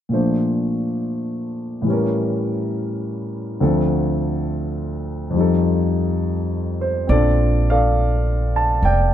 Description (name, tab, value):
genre	jazz ballad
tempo	69 BPM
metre	4/4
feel	swing 68% on 8ths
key	Bb major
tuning	A4 = 441 Hz
part	warm grand piano	accompaniment	0.1-9.1 s	D2 to A5	-19 LUFS	left 1 dB	none
part	upright bass	bass	7.1-9.1 s	F1 to Bb1	-17 LUFS	right 1 dB	none
room	light reverb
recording	dark, warm production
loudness	-18 LUFS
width	side -10 dB against mid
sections	0.1-7.1 A section; 7.1-9.1 B section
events	none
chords	0.1 Bbmaj7; 1.9 A7b9; 3.6 Dm7; 5.3 F9; 7.1 Bbmaj7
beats	| 0.11 0.98 1.85 2.72 | 3.59 4.46 5.33 6.21 | 7.08 7.95 8.83